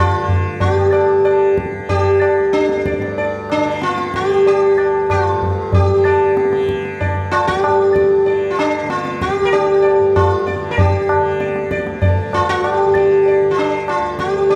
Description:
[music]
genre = indian classical, Hindustani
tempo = 95 BPM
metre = 4/4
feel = straight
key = unclear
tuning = A4 = 442 Hz
[part]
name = sitar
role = melody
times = 0.0-14.6 s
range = D4 to D5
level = -17 LUFS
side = equal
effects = none
[part]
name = tanpura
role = drone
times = 0.0-14.6 s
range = D2 to D3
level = -29 LUFS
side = equal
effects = none
[part]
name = tabla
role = percussion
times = 0.3-14.6 s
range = none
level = -22 LUFS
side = equal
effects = none
[sound]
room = moderate concert hall reverb, RT60 2.3 s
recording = none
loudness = -15 LUFS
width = mono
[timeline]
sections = 0.6-14.6 A section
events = speeding up 0.0-14.6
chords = none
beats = | 0.61 1.25 1.90 2.54 | 3.18 3.82 4.46 5.10 | 5.73 6.37 7.00 7.63 | 8.26 8.89 9.52 10.15 | 10.77 11.40 12.02 12.64 | 13.26 13.88 14.49

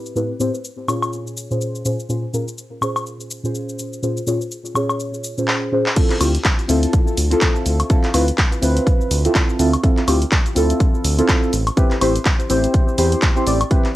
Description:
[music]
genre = deep house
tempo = 124 BPM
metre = 4/4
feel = swing 58% on 16ths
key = unclear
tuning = A4 = 440 Hz
[part]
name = deep mellow chord stab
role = stabs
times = 0.0-13.9 s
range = A2 to D5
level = -20 LUFS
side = equal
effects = chorus, phaser, sidechain pumping, cassette tape, tape echo
[part]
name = punchy analog drum machine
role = drums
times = 0.1-13.9 s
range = crash cymbal, handclaps, hi-hat, shaker, woodblock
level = -23 LUFS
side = left 1 dB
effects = cassette tape
[part]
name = electronic kick drum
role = drums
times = 6.0-13.8 s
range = none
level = -16 LUFS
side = equal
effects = cassette tape
[part]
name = round analog bass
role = bass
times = 6.2-13.6 s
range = A1 to E2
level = -18 LUFS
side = equal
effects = none
[sound]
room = light reverb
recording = home recording on cassette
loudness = -16 LUFS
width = side -15 dB against mid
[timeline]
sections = 0.0-6.0 A section; 6.0-14.0 B section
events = drum fill 5.5-6.0; drop 6.0-14.0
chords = 0.0 Am7; 1.1 Bbm7; 6.0 Dm7; 11.5 Am7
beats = | 0.16 0.64 1.13 1.61 | 2.09 2.58 3.06 3.55 | 4.03 4.51 5.00 5.48 | 5.96 6.45 6.93 7.42 | 7.90 8.38 8.87 9.35 | 9.84 10.32 10.80 11.29 | 11.77 12.26 12.74 13.22 | 13.71

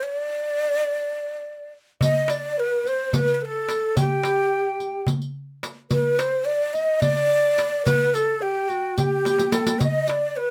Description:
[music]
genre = Turkish makam ensemble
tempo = 215 BPM (eighths)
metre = 7/8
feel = straight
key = D makam hicaz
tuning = A4 = 440 Hz
[part]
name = breathy ney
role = melody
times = 0.0-10.5 s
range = F#4 to Eb5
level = -25 LUFS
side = equal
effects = none
[part]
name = bright reedy alto flute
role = second line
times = 2.0-10.5 s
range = A4 to G5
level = -30 LUFS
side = equal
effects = none
[part]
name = darbuka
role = percussion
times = 2.0-10.2 s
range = none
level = -28 LUFS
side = equal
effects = none
[part]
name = riq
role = percussion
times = 2.0-10.2 s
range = none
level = -31 LUFS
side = equal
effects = none
[sound]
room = moderate studio ambience, RT60 0.5 s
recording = none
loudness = -23 LUFS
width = mono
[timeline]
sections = 0.0-2.0 A section; 2.0-10.5 B section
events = drum fill 9.3-9.8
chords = none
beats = | 0.06 0.34 0.62 0.90 1.17 1.45 1.73 | 2.01 2.29 2.57 2.85 3.13 3.41 3.69 | 3.96 4.24 4.52 4.80 5.08 5.36 5.64 | 5.91 6.19 6.47 6.75 7.03 7.31 7.58 | 7.86 8.14 8.42 8.70 8.98 9.25 9.53 | 9.81 10.09 10.37

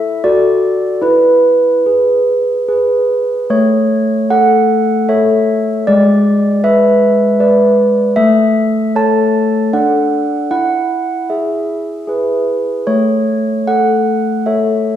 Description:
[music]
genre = classical, tune for handbells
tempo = 76 BPM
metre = 3/4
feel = straight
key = A major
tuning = A4 = 440 Hz
[part]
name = handbells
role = solo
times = 0.0-15.0 s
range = G#3 to A5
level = -10 LUFS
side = equal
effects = none
[sound]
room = wet recital hall reverb, RT60 1.4 s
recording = heard from further back in the room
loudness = -10 LUFS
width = side -10 dB against mid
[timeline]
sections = 0.0-3.5 A section; 3.5-15.0 A section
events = none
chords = 0.2 D/F#; 1.0 E; 3.5 A; 5.9 E7/G#; 8.2 A; 9.7 D; 10.5 E; 12.9 A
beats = 0.23 | 1.03 1.85 2.67 | 3.48 4.29 5.08 | 5.86 6.63 7.39 | 8.15 8.95 9.72 | 10.50 11.29 12.09 | 12.89 13.69 14.47

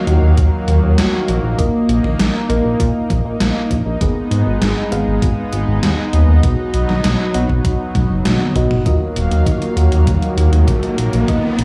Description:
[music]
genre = synthwave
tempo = 99 BPM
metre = 4/4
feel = straight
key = Eb minor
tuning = A4 = 439 Hz
[part]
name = lush unison pad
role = sustained chords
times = 0.0-11.6 s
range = Eb3 to F5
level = -24 LUFS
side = equal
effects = chorus, sidechain pumping
[part]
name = mellow FM electric piano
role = stabs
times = 0.0-11.6 s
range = Bb3 to F#5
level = -24 LUFS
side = equal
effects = chorus, digital delay
[part]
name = chorused synth bass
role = bass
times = 0.1-11.6 s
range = Eb1 to Bb2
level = -17 LUFS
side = equal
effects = none
[part]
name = gated 80s digital drum machine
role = drums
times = 0.1-11.6 s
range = hi-hat, snare drum, toms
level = -24 LUFS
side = equal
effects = gated reverb, gated reverb snare, small room ambience
[part]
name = electronic kick drum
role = drums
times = 0.4-11.4 s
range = none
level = -21 LUFS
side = equal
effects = small room ambience
[part]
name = riser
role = sound effects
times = 9.7-11.6 s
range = none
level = -28 LUFS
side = equal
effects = none
[sound]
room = light reverb, digital ambience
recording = small room reverb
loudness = -16 LUFS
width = mono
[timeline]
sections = 0.0-8.9 A section; 8.9-11.6 B section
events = drum fill 8.0-8.9, 8.9-11.6; riser 9.7-11.6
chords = 0.0 Ebmadd9; 1.6 Bbsus4; 4.0 Abm; 6.4 B; 8.9 Ebmadd9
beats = 0.38 0.98 | 1.59 2.19 2.80 3.40 | 4.01 4.62 5.22 5.83 | 6.43 7.04 7.65 8.25 | 8.86 9.47 10.07 10.68 | 11.28

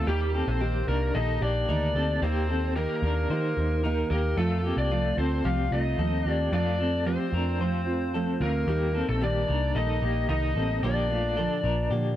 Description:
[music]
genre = indie pop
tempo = 111 BPM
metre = 4/4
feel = straight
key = unclear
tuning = A4 = 441 Hz
[part]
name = lead guitar through a small cranked amp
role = melody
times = 0.0-12.2 s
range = G4 to F5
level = -30 LUFS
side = left 2 dB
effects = overdrive
[part]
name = clear trumpet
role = second line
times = 0.0-12.2 s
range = G3 to F4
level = -39 LUFS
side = right 2 dB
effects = tape echo
[part]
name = fingerpicked steel-string acoustic guitar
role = accompaniment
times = 0.0-12.2 s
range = Bb2 to G4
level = -31 LUFS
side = right 4 dB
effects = none
[part]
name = electric guitar through a small old amp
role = arpeggios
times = 0.0-12.2 s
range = A3 to C5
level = -32 LUFS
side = left 2 dB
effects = tremolo
[part]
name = vintage muted picked electric bass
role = bass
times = 0.0-12.1 s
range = A1 to Eb3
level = -28 LUFS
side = equal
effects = none
[sound]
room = little or no reverb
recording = dry, close 1970s-style studio recording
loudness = -24 LUFS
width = side -12 dB against mid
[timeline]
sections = 0.0-12.2 A section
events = none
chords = 0.1 Eb; 4.4 F; 8.7 Eb; 10.8 Bb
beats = | 0.07 0.61 1.14 1.68 | 2.22 2.75 3.29 3.83 | 4.37 4.91 5.44 5.98 | 6.52 7.06 7.60 8.14 | 8.68 9.21 9.75 10.29 | 10.83 11.37 11.91

